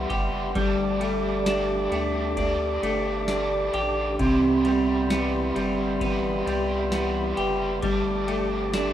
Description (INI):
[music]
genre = dream pop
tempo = 66 BPM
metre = 4/4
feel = straight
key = unclear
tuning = A4 = 440 Hz
[part]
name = overdriven semi-hollow guitar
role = accompaniment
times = 0.0-8.9 s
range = C3 to G4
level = -30 LUFS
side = right 4 dB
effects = harmonic tremolo, lush chorus, shimmer reverb
[part]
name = percussive tonewheel organ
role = sustained chords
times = 0.0-8.9 s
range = G4 to D6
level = -29 LUFS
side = left 1 dB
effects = fast rotary speaker, shimmer reverb
[part]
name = semi-hollow electric guitar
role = arpeggios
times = 0.0-8.9 s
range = C3 to G4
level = -25 LUFS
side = equal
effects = lush chorus, digital delay, shimmer reverb
[part]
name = round analog bass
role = bass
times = 0.0-8.9 s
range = F#1 to D2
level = -33 LUFS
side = equal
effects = none
[part]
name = booming analog drum machine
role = drums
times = 0.1-8.9 s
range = kick drum, ride cymbal, snare drum, tambourine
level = -30 LUFS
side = equal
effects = overdrive
[sound]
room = moderate lush hall reverb, RT60 2.2 s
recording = rough home demo mix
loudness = -22 LUFS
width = side -11 dB against mid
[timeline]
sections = 0.0-8.9 A section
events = none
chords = 0.0 Cmaj7; 0.6 Gsus2; 4.2 Cmaj7; 7.8 Gsus2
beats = | 0.56 1.47 2.38 3.29 | 4.20 5.11 6.02 6.92 | 7.83 8.74